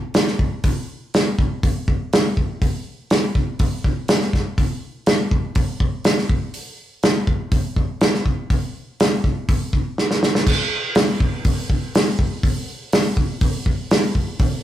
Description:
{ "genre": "rock", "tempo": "122 BPM", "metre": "4/4", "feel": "straight", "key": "none", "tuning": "none", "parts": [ { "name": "loose indie drum kit", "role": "drums", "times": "0.1-14.5 s", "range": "crash cymbal, hi-hat, kick drum, snare drum", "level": "-17 LUFS", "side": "equal", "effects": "none" } ], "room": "moderate studio reverb, RT60 0.5 s", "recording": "rough rehearsal-room recording, warm saturation", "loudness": "-18 LUFS", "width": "side -12 dB against mid", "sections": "0.0-10.5 A section; 10.5-14.6 B section", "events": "drum fill 10.0-10.5", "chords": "none", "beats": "0.15 | 0.64 1.13 1.62 2.11 | 2.60 3.10 3.59 4.08 | 4.57 5.06 5.55 6.04 | 6.53 7.02 7.51 8.01 | 8.50 8.99 9.48 9.97 | 10.46 10.96 11.45 11.94 | 12.43 12.92 13.41 13.90 | 14.39" }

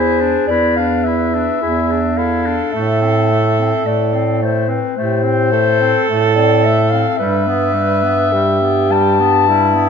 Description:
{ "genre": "classical, lyrical piece for single-reed quartet", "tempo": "53 BPM", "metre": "4/4", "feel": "rubato", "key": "A minor", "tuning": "A4 = 440 Hz", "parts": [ { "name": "dark clarinet", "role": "melody", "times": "0.0-9.9 s", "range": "B4 to A5", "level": "-17 LUFS", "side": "left 6 dB", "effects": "none" }, { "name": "mellow alto saxophone", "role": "second line", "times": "0.0-9.9 s", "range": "E4 to B4", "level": "-19 LUFS", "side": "right 6 dB", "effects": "none" }, { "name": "clear clarinet", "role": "accompaniment", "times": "0.0-9.9 s", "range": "G3 to E4", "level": "-21 LUFS", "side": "left 3 dB", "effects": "none" }, { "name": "mellow bass clarinet", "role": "bass", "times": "0.0-9.9 s", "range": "E2 to A2", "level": "-18 LUFS", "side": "right 2 dB", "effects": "none" } ], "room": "moderate scoring stage reverb, RT60 1.5 s", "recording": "nothing above 7.6 kHz", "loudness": "-12 LUFS", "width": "side -6 dB against mid", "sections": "0.0-9.9 A section", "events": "none", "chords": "0.0 E7; 2.7 Am; 7.2 Em/G", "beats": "0.47 1.59 | 2.72 3.85 4.96 6.08 | 7.17 8.31 9.48" }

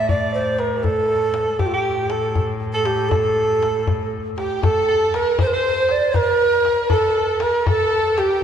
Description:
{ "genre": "Persian modal ensemble", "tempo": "79 BPM (dotted quarters)", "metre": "6/8", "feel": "straight", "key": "A dastgah shur", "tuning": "A4 = 438 Hz", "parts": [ { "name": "breathy mellow ney", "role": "melody", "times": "0.0-8.4 s", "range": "F4 to D5", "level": "-19 LUFS", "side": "right 2 dB", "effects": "none" }, { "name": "warm soprano saxophone", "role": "second line", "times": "0.0-8.4 s", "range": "G4 to D5", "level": "-26 LUFS", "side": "right 1 dB", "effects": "none" }, { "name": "warm cello", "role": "drone", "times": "0.0-4.7 s", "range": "A2", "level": "-29 LUFS", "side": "left 3 dB", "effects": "none" }, { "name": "tombak", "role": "percussion", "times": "0.1-8.3 s", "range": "none", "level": "-25 LUFS", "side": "left 3 dB", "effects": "none" }, { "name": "dark studio violin section", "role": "second line", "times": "4.4-8.4 s", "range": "G4 to C5", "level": "-26 LUFS", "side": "left 2 dB", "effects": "none" } ], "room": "wet church reverb, RT60 3.2 s", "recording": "recorded in a church or concert hall, nothing above 11.0 kHz", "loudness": "-17 LUFS", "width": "side -8 dB against mid", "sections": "0.0-4.6 A section; 4.6-8.4 B section", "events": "none", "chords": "none", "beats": "| 0.08 0.83 | 1.59 2.35 | 3.11 3.87 | 4.63 5.39 | 6.15 6.91 | 7.67 8.42" }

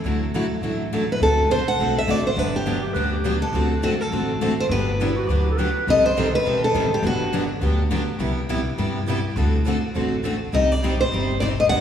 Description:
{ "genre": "acoustic string swing (jazz manouche)", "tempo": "206 BPM", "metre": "4/4", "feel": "swing 59% on 8ths", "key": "unclear", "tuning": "A4 = 438 Hz", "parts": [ { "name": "picked steel-string acoustic guitar", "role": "accompaniment", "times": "0.0-11.8 s", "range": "C3 to A4", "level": "-28 LUFS", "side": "right 3 dB", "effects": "none" }, { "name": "upright bass", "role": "bass", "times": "0.0-11.8 s", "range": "G1 to G2", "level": "-25 LUFS", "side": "equal", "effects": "none" }, { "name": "picked steel-string acoustic guitar", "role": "accompaniment", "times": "0.1-11.8 s", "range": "C3 to A4", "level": "-26 LUFS", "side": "left 3 dB", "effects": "none" }, { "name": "picked steel-string acoustic guitar", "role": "melody", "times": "1.1-7.3, 10.5-11.8 s", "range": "F#4 to F#5", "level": "-22 LUFS", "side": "equal", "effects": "none" }, { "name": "breathy clarinet", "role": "second line", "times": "2.8-5.9 s", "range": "E4 to B4", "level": "-31 LUFS", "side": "right 1 dB", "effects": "none" } ], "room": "wet church reverb, RT60 3.1 s", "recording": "recorded in a church or concert hall", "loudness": "-19 LUFS", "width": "side -9 dB against mid", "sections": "0.0-5.9 A section; 5.9-11.8 B section", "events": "none", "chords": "0.1 Dadd9; 1.2 D7; 2.4 Gmaj7; 3.5 D7; 4.7 Gmaj7; 5.9 Cm6; 7.0 Gmaj7; 8.2 Cmaj7; 9.4 D7; 10.5 Cm", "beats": "| 0.05 0.34 0.63 0.92 | 1.21 1.50 1.79 2.08 | 2.37 2.66 2.96 3.25 | 3.54 3.83 4.12 4.41 | 4.70 4.99 5.28 5.58 | 5.87 6.16 6.45 6.74 | 7.03 7.33 7.62 7.91 | 8.20 8.49 8.79 9.08 | 9.37 9.66 9.95 10.24 | 10.54 10.83 11.12 11.41 | 11.70" }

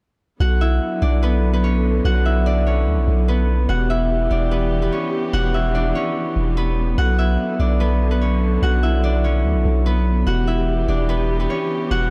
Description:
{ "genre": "hip hop, trap", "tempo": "146 BPM", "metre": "4/4", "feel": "half-time", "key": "B minor", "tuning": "A4 = 440 Hz", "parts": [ { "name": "concert harp", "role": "melody", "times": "0.4-12.1 s", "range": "B3 to F#5", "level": "-25 LUFS", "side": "equal", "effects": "diffuse ambient delay" }, { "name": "dark studio string section", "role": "sustained chords", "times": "0.4-12.1 s", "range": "D3 to G4", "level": "-28 LUFS", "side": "equal", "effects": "none" }, { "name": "long sustained 808-style bass", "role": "bass", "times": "0.4-12.1 s", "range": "E1 to D2", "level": "-21 LUFS", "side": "equal", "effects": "none" } ], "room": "light reverb, small room ambience", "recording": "none", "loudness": "-19 LUFS", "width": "mono", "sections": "0.4-12.1 A section", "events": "none", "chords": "0.4 Bm; 3.7 Em; 7.0 Bm; 10.3 Em", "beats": "| 0.40 0.81 1.23 1.64 | 2.05 2.46 2.87 3.28 | 3.69 4.10 4.51 4.92 | 5.33 5.75 6.16 6.57 | 6.98 7.39 7.80 8.21 | 8.62 9.03 9.45 9.86 | 10.27 10.68 11.09 11.50 | 11.91" }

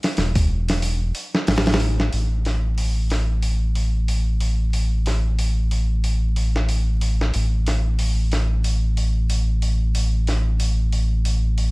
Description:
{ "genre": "trip hop", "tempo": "92 BPM", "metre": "4/4", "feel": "swing 57% on 16ths", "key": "unclear", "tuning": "A4 = 440 Hz", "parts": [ { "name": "dusty soul sampler-style drum kit", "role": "drums", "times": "0.0-11.7 s", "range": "hi-hat, kick drum, snare drum", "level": "-25 LUFS", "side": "equal", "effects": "high-pass filter on snare, high-pass filter on hats, high-pass filter on kick, high-pass filter on room" }, { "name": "round analog bass", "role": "bass", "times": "0.2-11.7 s", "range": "E1 to A1", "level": "-19 LUFS", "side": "equal", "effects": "none" } ], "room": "little or no reverb", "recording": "vinyl crackle", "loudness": "-19 LUFS", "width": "side -24 dB against mid", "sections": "0.0-2.1 A section; 2.1-11.7 B section", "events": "none", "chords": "none", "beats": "0.17 0.82 1.47 | 2.12 2.77 3.43 4.08 | 4.73 5.38 6.04 6.69 | 7.34 7.99 8.64 9.30 | 9.95 10.60 11.25" }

